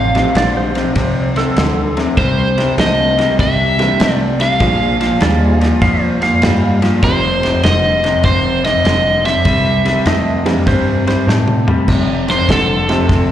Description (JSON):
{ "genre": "electric blues shuffle", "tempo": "99 BPM", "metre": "4/4", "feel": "swing 66% on 8ths", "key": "F mixolydian", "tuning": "A4 = 442 Hz", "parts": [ { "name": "overdriven semi-hollow guitar", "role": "melody", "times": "0.0-13.3 s", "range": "A4 to F5", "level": "-16 LUFS", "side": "right 1 dB", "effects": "slapback echo" }, { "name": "electric guitar through a small old amp", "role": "riff", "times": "0.0-13.3 s", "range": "F2 to A3", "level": "-17 LUFS", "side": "left 2 dB", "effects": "vibrato effect, slapback echo" }, { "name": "vintage muted fingered electric bass", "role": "bass", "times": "0.0-13.3 s", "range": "F1 to A2", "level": "-18 LUFS", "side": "equal", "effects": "none" }, { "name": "warm soul drum kit", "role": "drums", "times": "0.1-13.3 s", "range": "crash cymbal, kick drum, ride cymbal, snare drum, toms", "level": "-19 LUFS", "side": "equal", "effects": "none" }, { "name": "honky-tonk upright piano", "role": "accompaniment", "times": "0.2-13.1 s", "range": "E3 to Ab4", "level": "-22 LUFS", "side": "right 5 dB", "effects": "slapback echo" }, { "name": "clean lap steel guitar", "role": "second line", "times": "0.4-11.3 s", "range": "A4 to F5", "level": "-20 LUFS", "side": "right 4 dB", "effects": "slapback echo" } ], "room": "light reverb", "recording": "live gig heard through the venue's PA, recital hall reverb", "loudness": "-11 LUFS", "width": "side -11 dB against mid", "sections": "0.0-11.9 A section; 11.9-13.3 B section", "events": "drum fill 11.3-11.9; overdriven electric guitar solo 11.9-13.3", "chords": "0.0 F7; 2.2 C7; 4.6 Bb7; 7.0 F7; 9.5 C; 11.9 F7" }